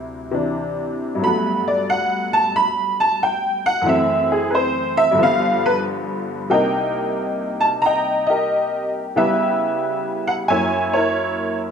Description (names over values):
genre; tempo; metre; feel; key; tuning
solo jazz; 90 BPM; 4/4; swing 68% on 8ths; unclear; A4 = 436 Hz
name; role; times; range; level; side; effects
honky-tonk upright piano; solo; 0.0-11.7 s; C2 to B5; -17 LUFS; equal; none
room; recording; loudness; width
wet large studio reverb, RT60 1.0 s; band playing live in one room; -17 LUFS; side -7 dB against mid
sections
0.0-6.5 A section; 6.5-11.7 B section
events
honky-tonk piano solo 0.0-6.5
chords
0.0 D9; 1.2 Gmaj9; 3.9 F#m7b5; 5.2 G7; 6.5 Cm7; 9.2 C#m7b5; 10.5 F#7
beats
0.53 | 1.20 1.86 2.52 3.19 | 3.85 4.51 5.18 5.84 | 6.51 7.17 7.84 8.50 | 9.17 9.83 10.50 11.16